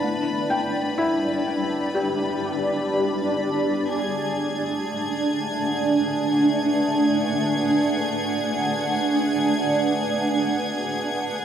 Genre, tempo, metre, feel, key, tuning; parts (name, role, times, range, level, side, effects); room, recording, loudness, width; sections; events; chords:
ambient; free time; B dorian; A4 = 439 Hz
granular cloud pad; sustained chords; 0.0-11.4 s; G3 to F#5; -22 LUFS; right 1 dB; built-in reverb, analog chorus
felt-muted upright piano; arpeggios; 0.0-5.1 s; E4 to A5; -28 LUFS; left 2 dB; tape echo
overtone-sweeping drone; drone; 0.0-4.0 s; B3 to D4; -32 LUFS; left 5 dB; chorus, built-in reverb
clear studio violin section; texture; 0.0-11.4 s; G#4 to G#6; -29 LUFS; left 2 dB
wet plate reverb, RT60 2.4 s; dreamy mix soaked in reverb; -21 LUFS; side -8 dB against mid
0.0-3.9 A section; 3.9-11.4 B section
0.0 G5; 3.9 Bm7